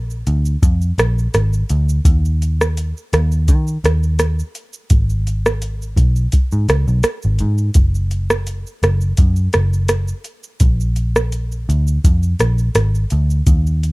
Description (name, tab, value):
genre	indie pop, bedroom pop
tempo	84 BPM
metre	4/4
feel	swing 55% on 16ths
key	unclear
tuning	A4 = 440 Hz
part	vintage muted picked electric bass	bass	0.0-13.9 s	F#1 to D#3	-16 LUFS	equal	none
part	soft vintage rhythm box	drums	0.1-13.9 s	hi-hat, kick drum, rim click, shaker	-16 LUFS	equal	overdrive
room	little or no reverb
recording	dry, close 1970s-style studio recording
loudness	-14 LUFS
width	side -23 dB against mid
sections	0.0-13.9 A section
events	none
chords	none